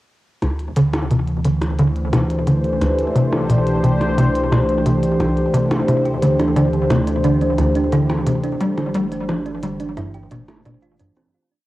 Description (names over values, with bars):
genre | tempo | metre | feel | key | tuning
ambient, sequencer-driven space music | 88 BPM | 4/4 | straight | unclear | A4 = 440 Hz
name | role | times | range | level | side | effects
sweeping resonant pad | sustained chords | 1.2-11.3 s | E3 to C5 | -20 LUFS | equal | chorus
tight sequencer bass | riff | 0.4-11.1 s | C2 to G3 | -19 LUFS | equal | lush chorus, tape echo
warm sub bass | bass | 0.4-11.3 s | G1 to D2 | -27 LUFS | equal | none
electronic hi-hat and percussion blips | percussion | 0.4-11.3 s | none | -26 LUFS | equal | cassette tape, tape echo
thumb-piano-like synth pluck | arpeggios | 5.9-11.3 s | D3 to G4 | -24 LUFS | right 4 dB | chorus, auto-pan, tape echo
room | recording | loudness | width
moderate spring reverb, RT60 1.2 s | home recording on cassette | -16 LUFS | side -16 dB against mid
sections
0.4-11.3 A section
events
fade-out 7.7-11.3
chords
0.4 D5; 3.2 Cmaj7; 5.9 D5; 8.6 Gsus4